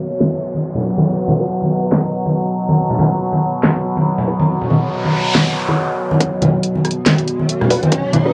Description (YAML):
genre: deep dubstep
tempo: 140 BPM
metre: 4/4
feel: swing 57% on 16ths, half-time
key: unclear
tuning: A4 = 440 Hz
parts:
  - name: overtone-sweeping drone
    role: sustained chords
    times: 0.0-8.3 s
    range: B2 to F#3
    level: -22 LUFS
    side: equal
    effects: chorus, built-in reverb, cassette tape
  - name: downlifter, noise sweep and riser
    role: sound effects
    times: 0.0-8.3 s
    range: none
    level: -29 LUFS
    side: equal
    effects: none
  - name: garage drum kit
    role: drums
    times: 0.2-8.2 s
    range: hi-hat, rim click, snare drum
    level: -19 LUFS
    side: equal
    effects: cassette tape
  - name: congas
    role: percussion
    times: 0.2-8.2 s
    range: none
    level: -20 LUFS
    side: equal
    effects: none
  - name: filtered dub chord stab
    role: stabs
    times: 0.8-1.5, 4.3-8.3 s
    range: D4 to B4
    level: -24 LUFS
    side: equal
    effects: phaser, subtle chorus, cassette tape, dub echo
  - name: electronic kick drum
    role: drums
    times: 6.2-8.0 s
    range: none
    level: -22 LUFS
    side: equal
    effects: high-pass filter on kick, cassette tape, high-pass filter on room
room: wet booth ambience, RT60 0.2 s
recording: home recording on cassette, low-pass filter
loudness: -17 LUFS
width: mono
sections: 0.0-6.2 A section; 6.2-8.3 B section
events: filter sweep 0.0-6.2; noise sweep 4.7-6.2; build-up 6.2-8.3; riser 6.2-8.3; filter sweep on synth drone 6.2-8.3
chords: 0.0 B5; 2.8 N.C.; 6.2 B5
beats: 0.21 0.64 | 1.06 1.49 1.92 2.35 | 2.78 3.21 3.63 4.06 | 4.49 4.92 5.35 5.78 | 6.21 6.63 7.06 7.49 | 7.92